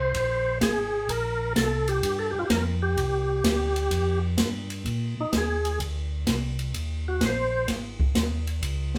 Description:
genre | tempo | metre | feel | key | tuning
soul jazz organ trio | 127 BPM | 4/4 | swing 68% on 8ths | Bb mixolydian | A4 = 440 Hz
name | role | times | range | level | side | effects
percussive tonewheel organ | melody | 0.0-9.0 s | Eb4 to C5 | -29 LUFS | equal | slow rotary speaker, overdrive, chorus vibrato
mellow tonewheel organ | bass | 0.0-9.0 s | Ab1 to Bb2 | -31 LUFS | equal | overdrive, stopped rotary speaker
open jazz drum kit | drums | 0.1-9.0 s | hi-hat, kick drum, ride cymbal, snare drum | -31 LUFS | equal | none
room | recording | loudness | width
moderate studio reverb, RT60 0.5 s | band playing live in one room | -26 LUFS | mono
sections
0.0-4.9 A section; 4.9-9.0 B section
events
tonewheel organ solo 4.9-9.0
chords
0.0 Abadd9; 1.1 Bbsus2; 2.0 Fadd9; 3.0 Csus2; 3.9 Fsus2; 4.9 Bb9sus4; 6.7 Eb5; 7.7 Ab5

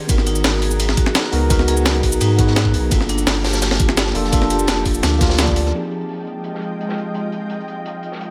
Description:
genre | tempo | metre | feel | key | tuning
liquid drum and bass | 170 BPM | 4/4 | straight | F dorian | A4 = 440 Hz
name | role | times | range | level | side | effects
ethereal airy pad | sustained chords | 0.0-8.3 s | F3 to Bb5 | -31 LUFS | equal | ensemble chorus, built-in reverb, vintage 12-bit sampler grit, sidechain pumping
vibraphone with hard mallets | arpeggios | 0.0-5.8 s | D4 to D5 | -27 LUFS | equal | tape echo
mellow tine electric piano | accompaniment | 0.1-8.3 s | F3 to Cb5 | -26 LUFS | equal | low-pass filter, tape echo
saturated sub bass | bass | 0.1-5.7 s | F1 to Ab2 | -22 LUFS | equal | none
breakbeat sampler-style drum kit | drums | 0.1-5.6 s | hi-hat, ride cymbal, shaker, snare drum | -24 LUFS | equal | low-pass filter on hats, studio reverb, low-pass filter on cymbals, low-pass filter on perc, low-pass filter on snare
crunchy breakbeat drum kit | drums | 0.1-8.3 s | hi-hat, snare drum | -29 LUFS | equal | high-pass filter on hats, low-pass filter on hats, studio reverb, high-pass filter on snare, low-pass filter on snare, high-pass filter on room, low-pass filter on room
electronic kick drum | drums | 0.1-5.5 s | none | -21 LUFS | equal | studio reverb
room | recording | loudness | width
light reverb, small room ambience | none | -18 LUFS | mono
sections
0.0-5.7 A section; 5.7-8.3 B section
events
drop 0.0-5.7; band accent 5.4; filter sweep on tine electric piano 5.7-8.3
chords
0.0 Abm9; 2.9 Gm9; 5.7 Fm9

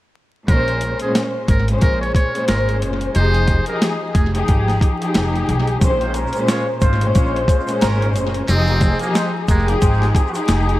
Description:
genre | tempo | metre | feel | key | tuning
hip hop, boom-bap hip-hop | 90 BPM | 4/4 | swing 60% on 16ths | unclear | A4 = 441 Hz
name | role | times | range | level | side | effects
trumpet with metal mute | melody | 0.5-4.3, 8.5-9.7 s | Ab3 to Db5 | -25 LUFS | right 1 dB | high-pass filter, low-pass filter, tape echo
muted studio string section | accompaniment | 0.5-10.8 s | Bb2 to C5 | -20 LUFS | left 1 dB | high-pass filter, low-pass filter, tape echo
upright bass | bass | 0.5-10.8 s | F1 to B1 | -19 LUFS | equal | none
boom bap sampler-style drum kit | drums | 0.5-10.8 s | hi-hat, kick drum, snare drum | -18 LUFS | equal | none
tube shaker | percussion | 5.8-10.7 s | none | -39 LUFS | right 7 dB | tape echo
dark trumpet section | stabs | 6.0-10.4 s | Ab3 to Db5 | -26 LUFS | right 2 dB | high-pass filter, low-pass filter, tape echo
room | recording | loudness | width
small room ambience | echo-heavy mix, vinyl crackle | -15 LUFS | side -16 dB against mid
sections
0.5-5.8 A section; 5.8-10.8 B section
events
none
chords
0.5 Bbm9; 3.1 Fm9; 5.8 Bbm9; 8.5 Fm9

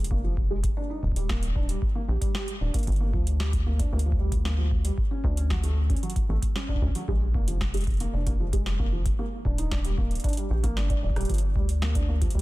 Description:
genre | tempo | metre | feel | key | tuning
IDM | 114 BPM | 4/4 | straight | G phrygian | A4 = 438 Hz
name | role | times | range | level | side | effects
rubbery square bass | bass | 0.0-12.4 s | Eb1 to D2 | -26 LUFS | equal | tube saturation
booming analog drum machine | drums | 0.0-12.4 s | hi-hat, rim click, snare drum | -36 LUFS | equal | ping-pong delay
felt-muted upright piano | arpeggios | 0.1-12.4 s | F3 to D5 | -34 LUFS | right 1 dB | vintage 12-bit sampler grit, digital delay
electronic kick drum | drums | 0.1-12.3 s | none | -27 LUFS | equal | none
room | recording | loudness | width
little or no reverb | dense, heavily limited modern master | -24 LUFS | side -19 dB against mid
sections
0.0-12.4 A section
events
drum fill 10.8-11.3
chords
0.0 N.C.; 0.8 Ebmaj7; 2.9 Gm; 5.0 Dmaj7(no3); 7.1 Bb7(no3); 9.2 Ebmaj7; 11.3 Gm

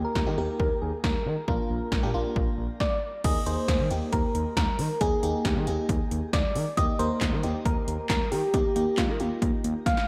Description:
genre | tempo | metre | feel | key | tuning
synth-pop | 136 BPM | 4/4 | straight | Eb major | A4 = 440 Hz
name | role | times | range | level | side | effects
soft struck synth lead | melody | 0.0-10.1 s | F4 to F5 | -32 LUFS | equal | chorus, phaser, shimmer reverb, delay
FM electric piano | accompaniment | 0.0-9.8 s | Bb3 to Bb4 | -35 LUFS | equal | chorus, phaser, shimmer reverb
smooth gliding synth bass | bass | 0.0-10.0 s | Bb1 to Eb3 | -32 LUFS | equal | none
80s electronic pad drums | drums | 0.2-10.1 s | crash cymbal, handclaps, hi-hat, kick drum, snare drum | -31 LUFS | equal | overdrive
room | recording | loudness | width
wet lush hall reverb, RT60 1.8 s | dreamy mix soaked in reverb | -27 LUFS | mono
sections
0.0-3.2 A section; 3.2-10.1 B section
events
drum fill 9.9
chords
0.0 Eb; 1.5 Bb; 3.2 Absus2/Eb; 6.8 Eb

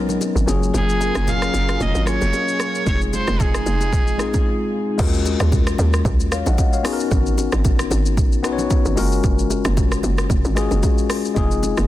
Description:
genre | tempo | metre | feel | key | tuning
amapiano | 113 BPM | 4/4 | swing 55% on 16ths | unclear | A4 = 441 Hz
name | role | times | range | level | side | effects
tine electric piano | accompaniment | 0.0-11.9 s | Gb3 to Gb5 | -23 LUFS | left 5 dB | low-pass filter
warm analog pad | sustained chords | 0.0-5.0 s | Gb3 to Bb4 | -29 LUFS | right 2 dB | chorus, sidechain pumping, low-pass filter
hollow log drum bass | bass | 0.0-11.9 s | F1 to Eb2 | -20 LUFS | equal | none
deep house drum kit | drums | 0.1-11.9 s | crash cymbal, hi-hat, kick drum, rim click, shaker | -21 LUFS | equal | soft clipping on snare
bongos and congas | percussion | 0.1-11.9 s | none | -29 LUFS | right 3 dB | none
rich erhu | melody | 0.8-4.5 s | Ab4 to F5 | -24 LUFS | right 1 dB | low-pass filter, tape echo
room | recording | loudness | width
digital ambience | dense, heavily limited modern master | -16 LUFS | side -14 dB against mid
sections
0.0-5.0 A section; 5.0-11.9 B section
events
break 4.5-5.0; drop 5.0-11.9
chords
0.5 Gbmaj9; 2.9 Fm7; 5.0 Ebm11; 6.8 Abm11; 9.0 Gbmaj9; 11.4 Fm7

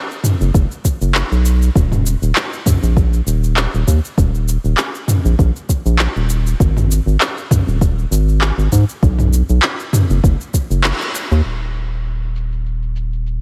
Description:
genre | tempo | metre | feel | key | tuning
sunset chillout | 99 BPM | 4/4 | swing 55% on 16ths | unclear | A4 = 440 Hz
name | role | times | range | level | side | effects
deep house drum kit | drums | 0.1-13.4 s | handclaps, shaker, toms | -21 LUFS | equal | overdrive, low-pass filter on perc, low-pass filter on snare, low-pass filter on toms, low-pass filter on room
round analog bass | bass | 0.4-13.4 s | Eb1 to Ab2 | -17 LUFS | equal | none
electronic kick drum | drums | 0.5-10.7 s | none | -17 LUFS | equal | none
room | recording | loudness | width
little or no reverb | none | -16 LUFS | mono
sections
0.0-11.5 A section; 11.5-13.4 B section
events
band accent 10.8-11.1; filter sweep on drum 11.5-13.4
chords
none

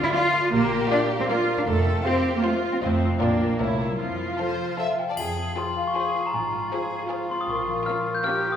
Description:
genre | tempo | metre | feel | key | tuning
cinematic, playful, whimsical film cue | 156 BPM | 3/4 | straight | F major, F minor from 5.2 s | A4 = 440 Hz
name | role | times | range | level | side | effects
rich chamber violin section | melody | 0.0-8.5 s | Bb4 to F5 | -35 LUFS | left 3 dB | none
rich chamber violin section | second line | 0.0-8.5 s | E4 to D5 | -33 LUFS | left 1 dB | none
rich chamber viola section | accompaniment | 0.0-8.5 s | C4 to A4 | -30 LUFS | right 3 dB | none
concert harp | arpeggios | 0.0-8.6 s | F2 to F5 | -29 LUFS | left 4 dB | none
rich studio cello section | bass | 0.0-8.6 s | F3 to Ab4 | -26 LUFS | right 2 dB | none
dark French horn section | sustained chords | 0.1-4.9 s | F4 to D5 | -33 LUFS | left 3 dB | none
dark chamber double bass section | bass | 0.5-7.8 s | F1 to F2 | -30 LUFS | right 2 dB | none
glockenspiel with rubber mallets | melody | 5.0-8.6 s | G5 to G6 | -26 LUFS | left 2 dB | none
triangle | percussion | 5.2-5.9 s | none | -40 LUFS | left 1 dB | none
room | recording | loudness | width
wet recital hall reverb, RT60 1.7 s | recorded in a church or concert hall | -22 LUFS | side -8 dB against mid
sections
0.0-5.2 A section; 5.2-8.6 B section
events
none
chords
0.0 Dm; 0.5 Bb; 1.7 F; 2.8 F7; 3.2 Bb; 3.6 C7b9; 4.0 F; 5.2 Fm; 6.3 Fm/Ab; 7.5 Bbm

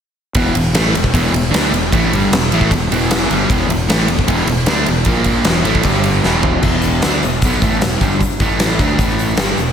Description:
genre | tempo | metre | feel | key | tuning
hard rock | 153 BPM | 4/4 | straight | E minor | A4 = 440 Hz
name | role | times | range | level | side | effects
huge arena drum kit | drums | 0.3-9.7 s | crash cymbal, hi-hat, kick drum, ride cymbal, snare drum, toms | -16 LUFS | equal | none
crunchy overdriven guitar | riff | 0.4-9.7 s | E2 to D4 | -16 LUFS | equal | none
fuzz fingered electric bass | bass | 0.4-9.7 s | E1 to D2 | -20 LUFS | equal | overdrive
room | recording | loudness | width
moderate lush hall reverb, RT60 1.7 s, studio reverb | big arena sound | -12 LUFS | side -8 dB against mid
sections
0.4-6.6 A section; 6.6-9.7 B section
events
drum fill 6.2-6.6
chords
0.4 Em; 5.1 A#5; 5.5 E5; 5.8 G5; 6.2 E5; 6.6 Em; 8.4 A5; 8.8 D5; 9.0 A5

